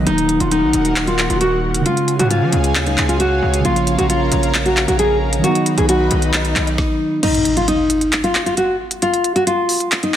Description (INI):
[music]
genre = hip hop, trap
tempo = 134 BPM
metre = 4/4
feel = half-time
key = Eb minor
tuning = A4 = 440 Hz
[part]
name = nylon-string guitar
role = melody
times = 0.0-10.2 s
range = Eb4 to Ab4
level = -17 LUFS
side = left 1 dB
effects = low-pass filter
[part]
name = muted felt-like synth keys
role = accompaniment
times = 0.0-7.2 s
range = Db3 to Eb4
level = -21 LUFS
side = right 3 dB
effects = chorus, low-pass filter
[part]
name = airy breathy pad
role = sustained chords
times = 0.0-6.8 s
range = Eb4 to B5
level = -25 LUFS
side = left 1 dB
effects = chorus
[part]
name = distorted 808-style bass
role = bass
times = 0.0-6.8 s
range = Eb1 to F3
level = -20 LUFS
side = equal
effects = distortion
[part]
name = trap drum kit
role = drums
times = 0.1-10.2 s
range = crash cymbal, handclaps, hi-hat, kick drum, snare drum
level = -20 LUFS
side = equal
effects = vintage 12-bit sampler grit
[part]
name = swell and impact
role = sound effects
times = 5.3-9.0 s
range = none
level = -26 LUFS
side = equal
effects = none
[sound]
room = light reverb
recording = dense, heavily limited modern master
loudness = -14 LUFS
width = side -10 dB against mid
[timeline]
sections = 0.1-7.2 A section; 7.2-10.2 B section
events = swell 5.3-7.2; kick muted 7.2-10.2; impact 7.2-9.0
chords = 0.1 Ebm; 1.9 Db; 3.6 Bbm; 5.4 B; 7.2 N.C.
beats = | 0.07 0.51 0.96 1.41 | 1.86 2.31 2.75 3.20 | 3.65 4.10 4.54 4.99 | 5.44 5.89 6.33 6.78 | 7.23 7.68 8.13 8.57 | 9.02 9.47 9.92